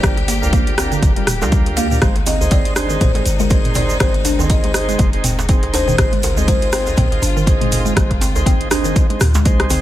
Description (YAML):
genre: afro house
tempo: 121 BPM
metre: 4/4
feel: swing 57% on 16ths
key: unclear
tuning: A4 = 438 Hz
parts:
  - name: buzzing kalimba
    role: melody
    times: 0.0-9.4 s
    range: Bb4 to F5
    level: -25 LUFS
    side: left 3 dB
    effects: dub echo
  - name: rich studio string section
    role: sustained chords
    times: 0.0-9.8 s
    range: C3 to G4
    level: -28 LUFS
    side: left 3 dB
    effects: sidechain pumping
  - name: mallet-like synth pluck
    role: arpeggios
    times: 0.0-9.8 s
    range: D3 to D4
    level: -24 LUFS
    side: right 1 dB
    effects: chorus, phaser, vintage 12-bit sampler grit, sidechain pumping, dub echo
  - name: tonewheel organ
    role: stabs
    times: 0.0-9.8 s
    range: C4 to C5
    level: -24 LUFS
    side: right 3 dB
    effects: slow rotary speaker, sidechain pumping, dub echo
  - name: warm 808-style bass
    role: bass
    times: 0.0-9.8 s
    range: D1 to D2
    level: -21 LUFS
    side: equal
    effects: sidechain pumping
  - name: afro-pop drum kit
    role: drums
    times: 0.0-9.8 s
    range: hi-hat, rim click, toms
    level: -22 LUFS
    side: equal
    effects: small room ambience
  - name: electronic kick drum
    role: drums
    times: 0.0-9.6 s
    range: none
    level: -15 LUFS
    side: equal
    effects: overdrive, small room ambience
  - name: egg shaker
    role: percussion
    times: 0.0-9.8 s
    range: none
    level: -28 LUFS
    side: right 4 dB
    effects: none
  - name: djembe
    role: percussion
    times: 0.2-9.8 s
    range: none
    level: -25 LUFS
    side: right 1 dB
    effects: none
room: small room ambience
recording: none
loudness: -13 LUFS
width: side -13 dB against mid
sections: 0.0-9.8 A section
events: drum fill 9.6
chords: 0.0 Gm7; 2.0 Ab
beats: | 0.04 0.53 1.03 1.52 | 2.02 2.51 3.01 3.51 | 4.00 4.50 4.99 5.49 | 5.99 6.48 6.98 7.47 | 7.97 8.46 8.96 9.46